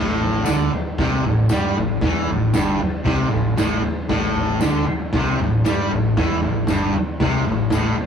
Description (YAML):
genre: garage rock duo or trio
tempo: 116 BPM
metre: 4/4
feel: straight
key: unclear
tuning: A4 = 440 Hz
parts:
  - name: fuzz guitar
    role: riff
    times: 0.0-8.0 s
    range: G2 to G3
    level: -20 LUFS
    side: equal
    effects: distortion
  - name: growling fingered electric bass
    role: bass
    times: 0.0-8.0 s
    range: G1 to G2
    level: -26 LUFS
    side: left 1 dB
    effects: overdrive
  - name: raw garage drum kit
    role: drums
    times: 0.2-8.1 s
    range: kick drum, snare drum, toms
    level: -22 LUFS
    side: equal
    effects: none
  - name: tambourine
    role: percussion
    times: 0.5-7.8 s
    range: none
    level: -38 LUFS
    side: left 6 dB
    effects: none
room: wet small room reverb, RT60 0.5 s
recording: rough rehearsal-room recording, tube saturation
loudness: -17 LUFS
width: side -7 dB against mid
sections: 0.0-8.1 A section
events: none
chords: 0.0 A5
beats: 0.46 0.98 1.50 | 2.02 2.54 3.06 3.58 | 4.10 4.62 5.14 5.66 | 6.18 6.70 7.21 7.73